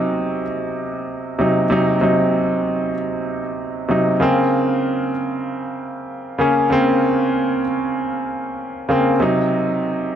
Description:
dancehall; 96 BPM; 4/4; straight; Bb minor; A4 = 440 Hz
clear grand piano; solo; 0.0-10.2 s; C3 to Eb4; -17 LUFS; equal; tape echo
moderate plate reverb, RT60 3.2 s; dark, warm production; -17 LUFS; side -9 dB against mid
0.0-4.2 A section; 4.2-10.2 B section
0.0 Cdim; 4.2 Bbmadd9; 9.2 Cdim

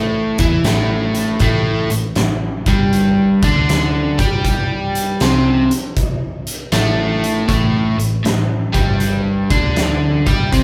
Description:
blues rock power trio and southern rock; 79 BPM; 4/4; swing 66% on 8ths; A minor; A4 = 440 Hz
overdriven electric guitar; riff; 0.0-10.6 s; G2 to G4; -19 LUFS; equal
vintage muted picked electric bass; bass; 0.0-10.6 s; G1 to G2; -24 LUFS; equal
oversized low-tuned drum kit; drums; 0.4-10.6 s; hi-hat, kick drum, snare drum; -22 LUFS; equal
moderate large studio reverb, RT60 0.8 s; band playing live in one room; -16 LUFS; mono
0.0-10.6 A section
0.0 Am

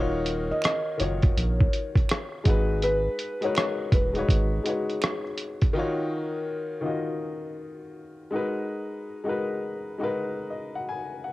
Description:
lo-fi hip hop; 82 BPM; 4/4; swing 65% on 16ths; Eb minor; A4 = 441 Hz
felt-muted upright piano; melody; 0.0-5.2 s; Cb5 to Eb5; -30 LUFS; left 1 dB; cassette tape
warm upright piano; accompaniment; 0.0-11.3 s; Eb3 to Ab5; -29 LUFS; left 2 dB; cassette tape
soft dub sub bass; bass; 0.0-4.6 s; Eb1 to Bb1; -28 LUFS; equal; tube saturation
lo-fi sampler-style drum kit; drums; 0.3-5.7 s; hi-hat, kick drum, rim click; -24 LUFS; equal; cassette tape
finger snap; percussion; 0.6-5.2 s; -39 LUFS; right 6 dB
light reverb; home recording on cassette; -24 LUFS; side -18 dB against mid
0.0-5.7 A section; 5.7-11.3 B section
0.0 Ebm7; 2.5 Abm7; 5.7 Ebm7; 8.3 Abm7

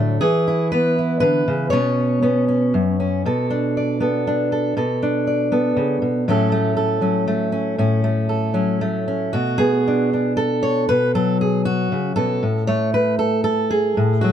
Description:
folk, solo fingerstyle acoustic guitar; 118 BPM; 3/4; straight; B dorian; A4 = 440 Hz
fingerpicked steel-string acoustic guitar; solo; 0.0-14.3 s; F#2 to D5; -17 LUFS; equal
light reverb; dark, warm production; -17 LUFS; side -9 dB against mid
0.0-3.2 A section; 3.2-9.3 B section; 9.3-14.3 C section
0.2 E; 1.7 Bsus2; 3.2 Bm7; 6.3 F#m/A; 9.3 Bm7; 12.4 F#m/A

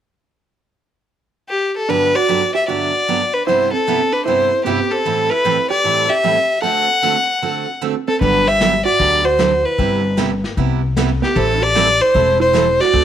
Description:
country, western swing; 152 BPM; 4/4; swing 67% on 8ths; G major; A4 = 440 Hz
clear fiddle; melody; 1.5-13.0 s; G4 to F#5; -15 LUFS; left 1 dB
hollow-body jazz guitar; second line; 1.9-13.0 s; B3 to A4; -23 LUFS; right 10 dB
picked steel-string acoustic guitar; accompaniment; 1.9-13.0 s; G2 to A4; -22 LUFS; right 9 dB
upright bass; bass; 8.2-13.0 s; E1 to D2; -20 LUFS; left 2 dB
vintage brush drum kit; drums; 8.2-13.0 s; brushed snare drum, hi-hat, kick drum, snare drum; -24 LUFS; left 3 dB
light reverb, small room ambience; 1960s-style stereo; -14 LUFS; side -10 dB against mid
0.3-1.9 A section; 1.9-8.2 B section; 8.2-13.0 C section
0.3 N.C.; 1.9 Gmaj7; 3.5 Cmaj7/G; 5.1 Am7; 6.6 D7; 8.2 Gmaj7; 9.8 Cmaj7/G; 11.4 Am7

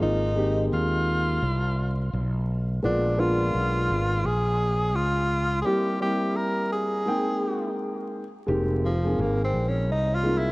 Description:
hip hop, jazz-hop; 85 BPM; 4/4; swing 63% on 16ths; Ab major; A4 = 440 Hz
breathy tenor saxophone; melody; 0.0-10.5 s; F3 to Bb4; -27 LUFS; equal; analog delay
dark grand piano; accompaniment; 0.0-10.5 s; G3 to G5; -27 LUFS; equal
fretless electric bass; bass; 0.0-10.5 s; F1 to Eb2; -26 LUFS; equal
light reverb, small room ambience; worn, warbling old tape, cassette tape, vinyl crackle, warbly pitch drift; -23 LUFS; side -22 dB against mid
0.0-8.5 A section; 8.5-10.5 B section
break 5.7-8.5; tenor saxophone solo 8.5-10.5
0.0 Ab69; 2.8 Bb7b9; 5.7 C7; 7.1 Abmaj9; 8.5 Fm11

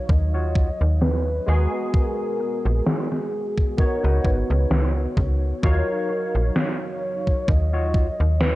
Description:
vaporwave; 65 BPM; 4/4; swing 55% on 16ths; Eb minor; A4 = 440 Hz
warm velvety synth lead; melody; 0.0-8.6 s; Ab4 to Eb5; -29 LUFS; left 1 dB; chorus, tape echo
barky tine electric piano; accompaniment; 0.0-8.6 s; Gb3 to F5; -29 LUFS; equal; ensemble chorus, analog delay
warbly tape-like pad; sustained chords; 2.2-8.6 s; Cb3 to Gb4; -52 LUFS; equal
slap-like FM bass; bass; 0.1-8.6 s; Ab1 to Eb2; -20 LUFS; equal
electronic kick drum; drums; 0.1-8.1 s; -20 LUFS; equal
semi-hollow electric guitar; riff; 0.3-8.4 s; Cb4 to Db5; -35 LUFS; left 1 dB; wide subtle chorus, low-pass filter, analog delay
electronic snare drum; drums; 1.0-8.6 s; -24 LUFS; equal; gated reverb, gated reverb snare, low-pass filter on hats, low-pass filter on snare, low-pass filter on room
digital ambience; cassette tape; -20 LUFS; side -18 dB against mid
0.0-8.6 A section
filter sweep on drum 0.0-8.6
0.0 Ebm9; 1.5 Abm9; 3.8 Db9sus4; 5.6 Ebm9

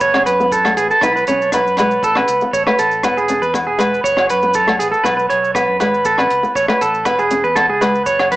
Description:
highlife guitar band; 119 BPM; 4/4; straight; E major; A4 = 440 Hz
electric guitar at the edge of break-up; arpeggios; 0.0-8.4 s; G#4 to C#5; -14 LUFS; right 2 dB; spring reverb, tape echo
fingered electric bass; bass; 0.0-8.4 s; E1 to F#2; -31 LUFS; equal
compact cocktail drum kit; drums; 0.0-8.4 s; hi-hat, kick drum, rim click; -26 LUFS; equal
maracas; percussion; 0.0-8.3 s; -33 LUFS; left 3 dB
flamenco guitar; accompaniment; 0.1-7.9 s; G#3 to F#4; -23 LUFS; left 2 dB
agogo bells; percussion; 0.1-8.3 s; -24 LUFS; left 3 dB
moderate small room reverb, RT60 0.5 s; small speaker sound; -13 LUFS; side -17 dB against mid
0.0-8.4 A section
0.0 F#m; 1.0 B; 2.0 A; 3.0 E; 4.0 F#m; 5.1 B5; 6.1 A; 7.1 E

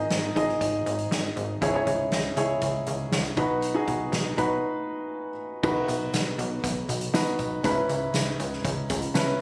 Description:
piano-driven pop; 120 BPM; 4/4; straight; A4 = 439 Hz
felt-muted upright piano; accompaniment; 0.0-9.4 s; G#2 to D#5; -29 LUFS; equal
plucky analog bass; bass; 0.0-9.4 s; G#1 to C#2; -33 LUFS; equal
soft-mallet drum kit; drums; 0.1-9.3 s; crash cymbal, hi-hat, kick drum, snare drum; -33 LUFS; equal
tambourine; percussion; 5.6-9.3 s; -44 LUFS; equal
moderate large studio reverb, RT60 1.0 s, small room ambience; recorded on a phone in the room, studio reverb; -27 LUFS; mono
0.0-5.6 A section; 5.6-9.4 B section
break 4.6-5.6
0.0 G#; 1.6 C#m; 3.4 B; 7.6 C#m7

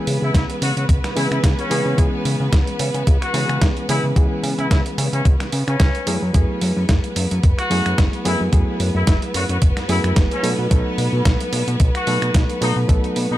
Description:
nu-disco, nu disco; 110 BPM; 4/4; swing 55% on 16ths; C# minor; A4 = 435 Hz
bright reed electric piano; accompaniment; 0.0-13.4 s; E3 to A4; -25 LUFS; equal; overdrive, sidechain pumping, tape echo
rich studio violin section; sustained chords; 0.0-13.4 s; B3 to B4; -28 LUFS; equal; sidechain pumping
fat analog bass; bass; 0.1-13.4 s; F#1 to C#3; -21 LUFS; equal; tube saturation
dusty soul sampler-style drum kit; drums; 0.1-13.3 s; finger snaps, hi-hat, snare drum; -26 LUFS; right 2 dB; overdrive
warm trumpet section; melody; 0.2-13.4 s; C#4 to F#4; -27 LUFS; left 2 dB; tape echo
electronic kick drum; drums; 0.3-13.0 s; -16 LUFS; equal
digital ambience; -16 LUFS; side -14 dB against mid
0.0-13.4 A section
0.0 C#m7; 6.1 F#m11; 10.4 B7

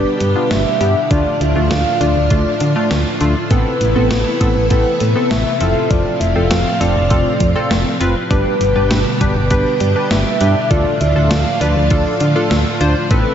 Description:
synth-pop; 100 BPM; 4/4; straight; A4 = 440 Hz
soft octave-layered synth lead; melody; 0.0-13.3 s; B4 to F5; -19 LUFS; equal; chorus, phaser, tape echo
funky polysynth comp; accompaniment; 0.0-13.3 s; A3 to C5; -20 LUFS; left 1 dB; chorus
string machine, violins; sustained chords; 0.0-13.3 s; A2 to G4; -20 LUFS; equal; ensemble chorus
solid FM bass; bass; 0.0-13.2 s; F1 to D3; -17 LUFS; equal
gated 80s digital drum machine; drums; 0.2-13.2 s; hi-hat, kick drum, snare drum; -19 LUFS; equal; gated reverb, gated reverb snare, overdrive
moderate lush hall reverb, RT60 1.8 s; dreamy mix soaked in reverb, nothing above 7.7 kHz; -13 LUFS; side -9 dB against mid
0.0-13.3 A section
0.0 G; 1.1 Dm; 3.5 Amadd9; 5.6 F; 8.3 G; 10.7 Dm

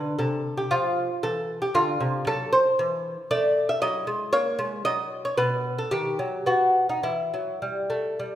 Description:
classical, baroque-style dance for lute; 102-117 BPM; 3/4; rubato; A4 = 443 Hz
lute; solo; 0.0-8.4 s; B2 to E5; -23 LUFS; equal
wet recital hall reverb, RT60 1.6 s; recorded in a church or concert hall; -22 LUFS; side -12 dB against mid
0.0-8.4 A section
0.0 Cmaj7sus2; 0.7 F5; 2.3 F#m7b5; 3.8 F#7; 5.4 B; 6.5 N.C.; 7.0 Em

